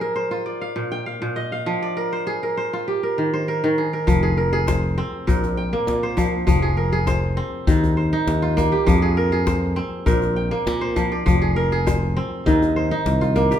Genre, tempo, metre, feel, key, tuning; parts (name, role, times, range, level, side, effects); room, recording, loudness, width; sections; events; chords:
west african traditional, West African string and xylophone music; 100 BPM; 4/4; straight; F dorian; A4 = 445 Hz
kora; arpeggios; 0.0-13.6 s; Bb2 to G5; -21 LUFS; right 1 dB
modern bright fingered electric bass; bass; 4.1-13.5 s; F1 to Bb2; -22 LUFS; equal
djembe; percussion; 4.1-13.6 s; -23 LUFS; left 3 dB
moderate recital hall reverb, RT60 1.4 s; minimal, uncompressed stereo recording; -18 LUFS; side -10 dB against mid
0.0-4.1 A section; 4.1-13.6 B section
drum fill 13.2-13.6
0.5 Bb; 1.7 Fm; 2.9 Eb; 4.1 Fm; 5.3 Bb5; 6.5 Fm; 7.7 Eb; 8.9 Fm; 10.1 Bb; 11.3 Fm; 12.5 Eb5